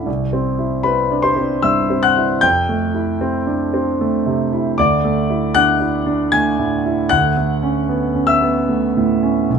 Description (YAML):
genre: classical, impressionist solo piano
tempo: 76 BPM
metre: 3/4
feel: rubato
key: unclear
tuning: A4 = 440 Hz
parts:
  - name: clear concert grand piano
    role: solo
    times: 0.0-9.6 s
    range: B1 to G#6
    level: -15 LUFS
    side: equal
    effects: none
room: light reverb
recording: close, detailed microphones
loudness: -15 LUFS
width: side -6 dB against mid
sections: 0.0-9.6 A section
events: none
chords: 0.1 Cmaj7; 2.4 Fmaj9; 4.8 Dadd9; 7.1 Aadd9/D